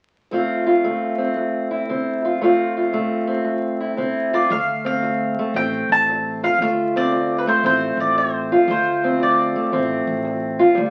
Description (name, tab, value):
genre	acoustic country blues, solo or duo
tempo	115 BPM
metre	4/4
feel	swing 66% on 8ths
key	D minor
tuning	A4 = 440 Hz
part	fingerpicked steel-string acoustic guitar	accompaniment	0.3-10.9 s	D2 to F4	-21 LUFS	equal	none
part	mandolin	melody	4.3-10.0 s	B4 to A5	-22 LUFS	equal	none
part	upright bass	bass	4.5-10.9 s	A1 to D2	-34 LUFS	equal	none
room	wet studio reverb, RT60 0.6 s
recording	very old 78 rpm record, vinyl crackle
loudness	-20 LUFS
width	mono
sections	0.3-4.5 A section; 4.5-10.9 B section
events	none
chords	0.3 Dm7